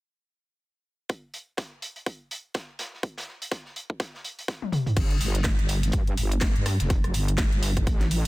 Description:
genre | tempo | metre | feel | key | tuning
bass house | 124 BPM | 4/4 | swing 58% on 16ths | unclear | A4 = 440 Hz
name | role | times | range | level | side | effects
crunchy breakbeat drum kit | drums | 1.1-8.2 s | hi-hat, snare drum | -38 LUFS | right 1 dB | high-pass filter on hats, high-pass filter on snare, high-pass filter on room
electronic kick drum | drums | 1.1-8.0 s | none | -25 LUFS | equal | overdrive, high-pass filter on kick
garage drum kit | drums | 4.6-8.3 s | crash cymbal, hi-hat, rim click, snare drum, toms | -29 LUFS | equal | none
wobble bass | bass | 5.0-8.3 s | F1 to G2 | -25 LUFS | equal | chorus, overdrive, sidechain pumping
room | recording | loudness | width
little or no reverb | dense, heavily limited modern master | -24 LUFS | side -19 dB against mid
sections
1.1-5.0 A section; 5.0-8.3 B section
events
drum fill 4.6-5.0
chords
none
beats
| 1.10 1.58 2.06 2.55 | 3.03 3.52 4.00 4.48 | 4.97 5.45 5.93 6.42 | 6.90 7.39 7.87

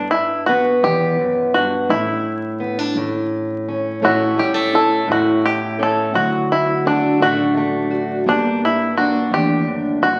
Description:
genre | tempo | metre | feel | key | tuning
acoustic folk duo or small band | 57 BPM (dotted quarters) | 6/8 | straight | unclear | A4 = 440 Hz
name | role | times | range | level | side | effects
bluegrass banjo | melody | 0.0-10.2 s | D4 to A4 | -21 LUFS | equal | none
fingerpicked plugged-in steel-string acoustic guitar | accompaniment | 0.0-10.2 s | D2 to E4 | -22 LUFS | equal | none
upright bass | bass | 0.0-10.2 s | G1 to E2 | -34 LUFS | equal | none
fingerpicked twelve-string acoustic guitar | arpeggios | 4.0-10.2 s | F#3 to A4 | -24 LUFS | equal | none
room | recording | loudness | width
wet large studio reverb, RT60 1.2 s | very old 78 rpm record, vinyl crackle | -18 LUFS | mono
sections
0.0-10.2 A section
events
none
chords
0.0 Em/G; 1.9 Asus4; 3.0 A; 6.1 D; 8.3 Gm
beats
0.84 | 1.90 2.96 | 4.02 5.08 | 6.14 7.20 | 8.26 9.32

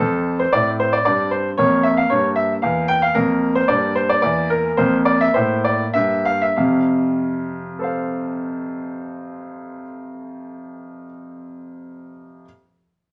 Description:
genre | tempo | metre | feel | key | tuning
classical-period piano sonatina | 93-115 BPM | 3/4 | rubato | F major | A4 = 438 Hz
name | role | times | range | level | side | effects
bright baby grand piano | solo | 0.0-12.5 s | E2 to G5 | -20 LUFS | equal | none
room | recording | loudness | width
moderate large studio reverb, RT60 0.9 s | nothing above 10.8 kHz | -19 LUFS | mono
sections
0.0-6.6 A section; 6.6-10.2 B section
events
slowing down 2.4-6.6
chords
0.0 F; 1.6 Bb5/F; 4.8 Bbmaj9#11/F; 6.6 F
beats
0.53 1.05 | 1.58 2.10 2.62 | 3.16 3.69 4.24 | 4.79 5.36 5.96 | 6.58 7.20 7.80 | 8.40 9.01 9.62

